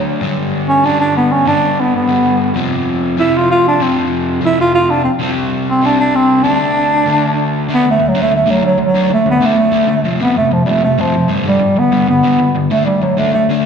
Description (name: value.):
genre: punk.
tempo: 192 BPM.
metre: 4/4.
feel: straight.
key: unclear.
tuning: A4 = 440 Hz.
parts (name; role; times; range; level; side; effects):
breathy bass clarinet; melody; 0.0-13.5 s; F3 to F4; -12 LUFS; right 1 dB; slapback echo, ping-pong delay.
crunchy overdriven guitar; riff; 0.0-13.7 s; F2 to D4; -16 LUFS; left 2 dB; none.
room: light reverb, small room ambience.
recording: live gig heard through the venue's PA, recital hall reverb.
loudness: -11 LUFS.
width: side -6 dB against mid.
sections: 0.0-7.7 A section; 7.7-13.7 B section.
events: none.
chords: 0.2 G; 2.6 F5; 5.2 C5; 6.5 D5; 10.1 F5; 11.3 G; 12.7 D5.